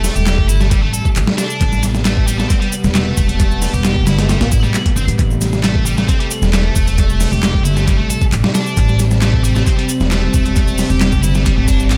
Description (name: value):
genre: breakbeat, breaks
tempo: 134 BPM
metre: 4/4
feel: straight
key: A minor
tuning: A4 = 435 Hz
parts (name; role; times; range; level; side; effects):
- warbly tape-like pad; sustained chords; 0.0-12.0 s; C3 to C4; -24 LUFS; equal; chorus, built-in reverb, sidechain pumping
- heavy high-gain guitar; riff; 0.0-12.0 s; G3 to A4; -26 LUFS; equal; distortion, vintage 12-bit sampler grit, tape echo
- upright bass; bass; 0.0-12.0 s; E1 to A1; -19 LUFS; equal; none
- dusty soul sampler-style drum kit; drums; 0.0-12.0 s; hi-hat, kick drum, snare drum; -18 LUFS; equal; overdrive, studio reverb, tape echo
- electronic shaker and handclaps; drums; 0.0-12.0 s; none; -29 LUFS; equal; studio reverb, tape echo
- reverse cymbal; sound effects; 11.7-12.0 s; none; -32 LUFS; equal; none
room: light reverb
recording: echo-heavy mix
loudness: -15 LUFS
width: mono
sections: 0.0-12.0 A section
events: reverse cymbal 11.7-12.0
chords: 0.0 Am7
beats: 0.26 0.71 1.16 | 1.61 2.06 2.50 2.95 | 3.40 3.85 4.29 4.74 | 5.19 5.64 6.08 6.53 | 6.98 7.43 7.88 8.32 | 8.77 9.22 9.67 10.11 | 10.56 11.01 11.46 11.90